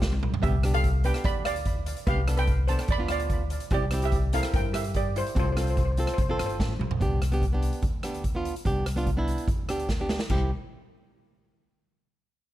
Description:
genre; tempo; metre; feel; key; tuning
calypso; 146 BPM; 4/4; straight; C major; A4 = 440 Hz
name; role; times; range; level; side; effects
flamenco guitar; accompaniment; 0.0-10.5 s; B3 to Bb4; -33 LUFS; right 2 dB; none
upright bass; bass; 0.0-10.5 s; G1 to G2; -28 LUFS; left 1 dB; none
street-band drum kit; drums; 0.0-10.4 s; crash cymbal, hi-hat, kick drum, rim click, snare drum, toms; -29 LUFS; right 1 dB; none
steel pan; melody; 0.4-6.5 s; E4 to B5; -31 LUFS; right 1 dB; analog delay
room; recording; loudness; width
little or no reverb; close, detailed microphones; -24 LUFS; side -14 dB against mid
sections
0.0-7.0 A section; 7.0-10.3 B section; 10.3-12.0 C section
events
drum fill 0.0-0.4, 6.6-7.0, 9.9-10.3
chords
0.4 G/C; 3.7 C7; 5.4 F/C; 7.0 G/C; 10.3 C

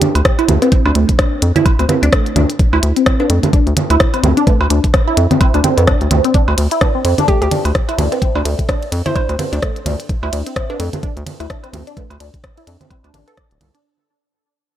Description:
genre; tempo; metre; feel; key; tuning
minimal techno; 128 BPM; 4/4; swing 58% on 16ths; D minor; A4 = 440 Hz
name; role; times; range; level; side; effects
resonant blip pluck; riff; 0.0-13.8 s; A3 to D5; -18 LUFS; equal; phaser, sidechain pumping, dub echo
minimal click drum kit; drums; 0.0-13.8 s; hi-hat, ride cymbal, rim click; -20 LUFS; left 1 dB; none
congas, woodblock and cowbell; percussion; 0.0-13.7 s; none; -19 LUFS; right 3 dB; overdrive, dub echo
rubbery square bass; bass; 0.2-13.7 s; D1 to F2; -15 LUFS; equal; sidechain pumping
electronic kick drum; drums; 0.3-13.5 s; none; -15 LUFS; equal; none
hollow square pluck; melody; 7.3-9.2 s; G4 to C5; -24 LUFS; right 1 dB; chorus, dub echo
room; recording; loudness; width
digital ambience; none; -12 LUFS; side -11 dB against mid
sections
0.0-13.8 A section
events
drop 0.0-13.8; fade-out 6.3-13.8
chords
none

